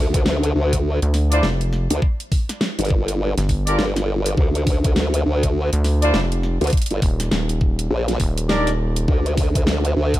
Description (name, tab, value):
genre	glitch hop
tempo	102 BPM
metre	4/4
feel	swing 61% on 16ths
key	D minor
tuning	A4 = 440 Hz
part	formant-sweep wobble bass	bass	0.0-10.2 s	G1 to D2	-19 LUFS	equal	chorus, tube saturation
part	dubstep drum kit	drums	0.1-10.2 s	hi-hat, snare drum	-25 LUFS	equal	none
part	electronic kick drum	drums	0.1-10.2 s	none	-19 LUFS	equal	none
part	rubbery square bass	bass	1.0-9.1 s	Eb1 to D2	-20 LUFS	equal	none
part	warm horn section	stabs	1.3-8.7 s	D4 to D5	-24 LUFS	equal	sidechain pumping, tape echo
room	digital ambience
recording	none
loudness	-17 LUFS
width	side -15 dB against mid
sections	0.0-10.2 A section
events	none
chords	0.0 Dm; 2.0 G5; 4.4 Dm; 6.7 Ebmaj7; 9.1 N.C.